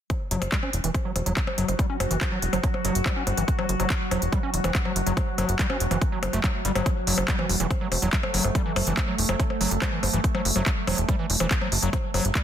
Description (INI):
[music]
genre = psychedelic trance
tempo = 142 BPM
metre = 4/4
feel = straight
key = F# phrygian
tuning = A4 = 440 Hz
[part]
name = evolving wavetable pad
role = sustained chords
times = 1.1-12.4 s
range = F#3 to F#4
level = -31 LUFS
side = right 2 dB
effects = chorus, built-in reverb, sidechain pumping
[part]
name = overdriven acid bass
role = riff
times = 0.1-12.4 s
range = E3 to C#4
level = -30 LUFS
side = moving between left 6 dB and right 6 dB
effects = distortion, auto-pan, sidechain pumping, tape echo
[part]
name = electronic kick drum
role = drums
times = 0.1-12.4 s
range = none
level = -26 LUFS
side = equal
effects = small room ambience
[part]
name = techno drum kit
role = drums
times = 0.1-12.4 s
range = handclaps, hi-hat, percussion blips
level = -28 LUFS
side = left 1 dB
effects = small room ambience
[part]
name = plucky analog bass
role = bass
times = 0.3-12.3 s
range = E1 to G1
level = -26 LUFS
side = equal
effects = none
[sound]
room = light reverb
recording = dense, heavily limited modern master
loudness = -22 LUFS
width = side -10 dB against mid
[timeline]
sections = 0.1-12.4 A section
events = filter sweep on acid bass 0.1-12.4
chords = 0.1 F#5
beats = | 0.10 0.52 0.94 1.37 | 1.79 2.21 2.63 3.06 | 3.48 3.90 4.33 4.75 | 5.17 5.59 6.02 6.44 | 6.86 7.28 7.71 8.13 | 8.55 8.97 9.40 9.82 | 10.24 10.66 11.09 11.51 | 11.93 12.35